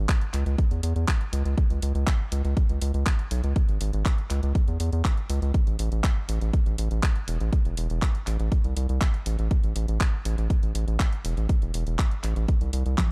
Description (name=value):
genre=melodic techno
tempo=121 BPM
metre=4/4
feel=straight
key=unclear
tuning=A4 = 439 Hz
part: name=round analog bass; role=bass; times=0.0-13.0 s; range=E1 to E2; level=-27 LUFS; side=equal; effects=sidechain pumping
part: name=electronic kick drum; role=drums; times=0.1-13.1 s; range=none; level=-26 LUFS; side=equal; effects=none
part: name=house drum kit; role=drums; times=0.1-13.1 s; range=handclaps, hi-hat, toms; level=-36 LUFS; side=equal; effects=none
room=little or no reverb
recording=dark, warm production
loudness=-25 LUFS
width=mono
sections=0.0-13.1 A section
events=none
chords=none